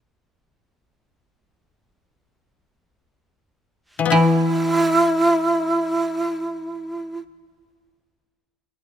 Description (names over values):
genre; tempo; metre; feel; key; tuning
japanese traditional, Japanese chamber music; free time; none; none; unclear; A4 = 440 Hz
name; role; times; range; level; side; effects
koto; accompaniment; 4.0-7.4 s; E3 to E4; -22 LUFS; left 11 dB; none
breathy long shakuhachi; melody; 4.1-7.2 s; E4; -19 LUFS; right 2 dB; none
koto; second line; 4.1-7.5 s; E3; -20 LUFS; equal; none
room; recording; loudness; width
light reverb; close, detailed microphones; -17 LUFS; side -10 dB against mid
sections
0.0-4.1 A section; 4.1-8.8 B section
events
slowing down 0.0-4.1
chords
none